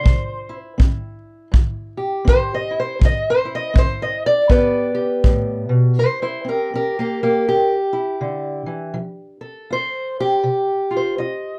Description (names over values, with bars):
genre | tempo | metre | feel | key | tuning
acoustic country blues, solo or duo | 81 BPM | 4/4 | swing 60% on 8ths | unclear | A4 = 439 Hz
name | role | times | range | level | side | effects
fingerpicked steel-string acoustic guitar | melody | 0.0-11.6 s | G2 to Eb5 | -21 LUFS | equal | none
kick drum | drums | 0.1-5.5 s | none | -18 LUFS | equal | none
room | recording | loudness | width
light reverb | dark, warm production | -19 LUFS | mono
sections
0.0-6.0 A section; 6.0-11.6 B section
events
steel-string acoustic guitar solo 0.0-6.0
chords
0.1 C; 4.5 G; 6.0 C; 9.0 F